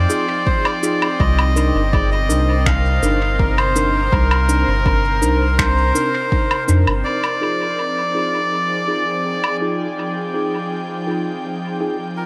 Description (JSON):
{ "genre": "ambient dub", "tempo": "82 BPM", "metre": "4/4", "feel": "straight", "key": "unclear", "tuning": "A4 = 440 Hz", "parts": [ { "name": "melodica", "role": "melody", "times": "0.0-12.3 s", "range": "Bb4 to F5", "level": "-23 LUFS", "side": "equal", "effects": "dub echo" }, { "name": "airy breathy pad", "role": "sustained chords", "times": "0.0-12.3 s", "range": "C3 to G5", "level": "-28 LUFS", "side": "equal", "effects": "chorus" }, { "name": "soft dub sub bass", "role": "bass", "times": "0.0-7.0 s", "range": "G1 to F2", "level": "-20 LUFS", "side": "equal", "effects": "tube saturation" }, { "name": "mellow tine electric piano", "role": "stabs", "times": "0.1-12.0 s", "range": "D4 to Bb4", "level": "-27 LUFS", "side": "equal", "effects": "low-pass filter, dub echo" }, { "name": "electronic shaker, woodblock and finger snaps", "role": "drums", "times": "0.1-9.6 s", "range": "none", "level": "-29 LUFS", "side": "equal", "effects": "dub echo" }, { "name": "electronic kick drum", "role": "drums", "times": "0.5-6.5 s", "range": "none", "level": "-22 LUFS", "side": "equal", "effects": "overdrive" } ], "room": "light reverb", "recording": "none", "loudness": "-18 LUFS", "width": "mono", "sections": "0.0-7.1 A section; 7.1-12.3 B section", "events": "none", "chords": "0.0 Fm7; 1.2 Cm9; 7.1 Fm7", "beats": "0.47 | 1.20 1.93 2.66 3.39 | 4.13 4.86 5.59 6.32 | 7.05 7.78 8.52 9.25 | 9.98 10.71 11.44 12.18" }